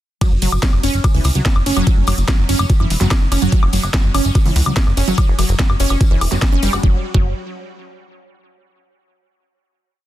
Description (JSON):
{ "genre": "psychedelic trance", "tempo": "145 BPM", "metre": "4/4", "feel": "straight", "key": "unclear", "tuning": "A4 = 440 Hz", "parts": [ { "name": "wide unison pluck", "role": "riff", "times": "0.2-7.3 s", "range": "E3 to F#4", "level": "-22 LUFS", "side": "right 2 dB", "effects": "auto-pan, sidechain pumping, tape echo" }, { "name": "drum and bass drum kit", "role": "drums", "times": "0.2-6.8 s", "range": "hi-hat, ride cymbal, snare drum, woodblock", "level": "-22 LUFS", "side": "left 1 dB", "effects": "overdrive" }, { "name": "electronic kick drum", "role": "drums", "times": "0.2-7.2 s", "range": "none", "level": "-15 LUFS", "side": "equal", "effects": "overdrive" }, { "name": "tambourine", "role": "percussion", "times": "0.2-6.8 s", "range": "none", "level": "-32 LUFS", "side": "left 8 dB", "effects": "none" }, { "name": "plucky analog bass", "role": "bass", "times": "0.3-7.3 s", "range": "E1 to C#2", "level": "-17 LUFS", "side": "equal", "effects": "none" } ], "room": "little or no reverb", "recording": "dense, heavily limited modern master", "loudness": "-13 LUFS", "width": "side -14 dB against mid", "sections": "0.2-6.8 drop; 6.8-8.5 final note", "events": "drop 0.2-6.8", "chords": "0.2 F#5; 6.8 N.C." }